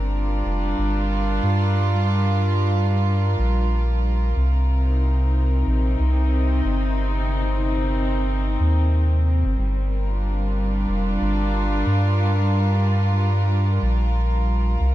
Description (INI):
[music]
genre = ambient dub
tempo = 92 BPM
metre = 4/4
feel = swing 59% on 16ths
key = G minor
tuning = A4 = 440 Hz
[part]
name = warm chamber string section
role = sustained chords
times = 0.0-14.9 s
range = C3 to Bb4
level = -24 LUFS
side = equal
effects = none
[part]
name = soft dub sub bass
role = bass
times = 0.0-14.9 s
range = F1 to G2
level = -20 LUFS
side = equal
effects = none
[sound]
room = small room ambience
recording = none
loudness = -18 LUFS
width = side -14 dB against mid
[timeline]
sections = 0.0-14.9 A section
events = none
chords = 0.0 Gm7; 4.4 Cm7; 9.6 Gm7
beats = 0.45 1.10 | 1.75 2.40 3.06 3.71 | 4.36 5.01 5.66 6.32 | 6.97 7.62 8.27 8.93 | 9.58 10.23 10.88 11.53 | 12.19 12.84 13.49 14.14 | 14.79